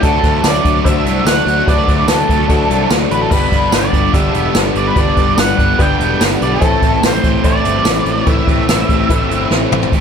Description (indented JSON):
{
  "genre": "classic rock",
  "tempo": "146 BPM",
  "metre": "4/4",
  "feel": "straight",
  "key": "unclear",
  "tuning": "A4 = 440 Hz",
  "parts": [
    { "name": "octave-fuzz lead guitar", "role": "melody", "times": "0.0-9.5 s", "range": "A4 to G5", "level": "-18 LUFS", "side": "right 2 dB", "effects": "distortion, tape echo" },
    { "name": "bright upright piano", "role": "accompaniment", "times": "0.0-9.8 s", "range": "D4 to D5", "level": "-25 LUFS", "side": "left 6 dB", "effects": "none" },
    { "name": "distorted electric guitar", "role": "riff", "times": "0.0-10.0 s", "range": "G2 to E4", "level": "-21 LUFS", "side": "left 14 dB", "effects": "distortion" },
    { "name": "distorted electric guitar", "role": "riff", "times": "0.0-10.0 s", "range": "G2 to E4", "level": "-22 LUFS", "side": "right 13 dB", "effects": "distortion" },
    { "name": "overdriven electric guitar", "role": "riff", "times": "0.0-9.9 s", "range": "G2 to E4", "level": "-20 LUFS", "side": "equal", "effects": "phaser" },
    { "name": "fuzz picked electric bass", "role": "bass", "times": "0.0-10.0 s", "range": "E1 to D2", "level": "-19 LUFS", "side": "equal", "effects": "overdrive" },
    { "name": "jazz brush drum kit", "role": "drums", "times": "0.0-10.0 s", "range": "crash cymbal, hi-hat, kick drum, snare drum, tambourine, toms", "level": "-15 LUFS", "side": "equal", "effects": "none" }
  ],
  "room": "small room ambience",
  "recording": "none",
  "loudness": "-11 LUFS",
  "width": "side -7 dB against mid",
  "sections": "0.0-9.9 A section",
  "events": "drum fill 9.5-9.9",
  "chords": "0.0 D; 3.3 G; 6.6 Am"
}